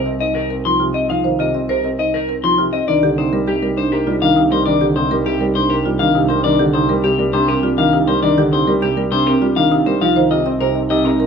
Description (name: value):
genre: classical, minimalist pattern music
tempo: 101 BPM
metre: 3/4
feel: straight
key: C minor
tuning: A4 = 443 Hz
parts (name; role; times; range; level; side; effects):
- electric guitar at the edge of break-up; melody; 0.0-11.2 s; G4 to C6; -19 LUFS; left 6 dB; none
- warm baby grand piano; accompaniment; 0.0-11.3 s; C3 to Eb4; -20 LUFS; left 2 dB; none
- marimba with medium hard mallets; arpeggios; 0.0-11.3 s; C4 to Eb5; -19 LUFS; right 5 dB; none
- rich double bass; bass; 0.0-11.3 s; C2; -25 LUFS; right 3 dB; none
- warm French horn; second line; 2.9-6.3, 10.0-11.3 s; Eb4; -24 LUFS; right 3 dB; none
room: wet large studio reverb, RT60 1.1 s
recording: none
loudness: -14 LUFS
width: side -6 dB against mid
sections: 0.0-11.3 A section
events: none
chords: 0.0 Ebsus2/C; 2.9 Cm9; 10.0 Ebsus2/C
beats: 0.50 | 1.10 1.69 2.29 | 2.88 3.47 4.07 | 4.66 5.26 5.85 | 6.44 7.04 7.63 | 8.23 8.82 9.41 | 10.01 10.60 11.20